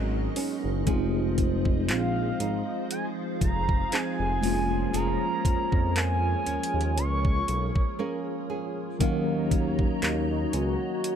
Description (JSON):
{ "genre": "contemporary R&B", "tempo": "59 BPM", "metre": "4/4", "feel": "swing 54% on 16ths", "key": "Eb minor", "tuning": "A4 = 440 Hz", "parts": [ { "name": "gliding portamento lead", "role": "melody", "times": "0.0-11.2 s", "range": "Eb4 to Db6", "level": "-31 LUFS", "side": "equal", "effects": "chorus" }, { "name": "mellow tine electric piano", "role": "accompaniment", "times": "0.0-11.2 s", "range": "Gb3 to F5", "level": "-31 LUFS", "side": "left 1 dB", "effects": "medium stereo tremolo" }, { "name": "hollow soft pad", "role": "sustained chords", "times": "0.0-11.2 s", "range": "F3 to Bb5", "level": "-35 LUFS", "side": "equal", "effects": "ensemble chorus" }, { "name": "flamenco guitar", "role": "arpeggios", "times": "0.0-11.2 s", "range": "Ab2 to Ab4", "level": "-35 LUFS", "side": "right 6 dB", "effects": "digital delay" }, { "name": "smooth synth bass", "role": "bass", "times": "0.0-10.8 s", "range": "F1 to F2", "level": "-29 LUFS", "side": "equal", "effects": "none" }, { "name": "smooth R&B drum kit", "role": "drums", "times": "0.4-11.2 s", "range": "handclaps, hi-hat, kick drum", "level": "-27 LUFS", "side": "equal", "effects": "none" } ], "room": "little or no reverb", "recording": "none", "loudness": "-24 LUFS", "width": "side -8 dB against mid", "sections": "0.0-9.0 A section; 9.0-11.2 A section", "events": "break 8.0-9.0", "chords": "0.0 Abm11; 0.9 Fm7; 9.0 Ebm7", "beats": "| 0.87 1.89 2.90 3.92 | 4.94 5.95 6.97 7.99 | 9.01 10.02 11.04" }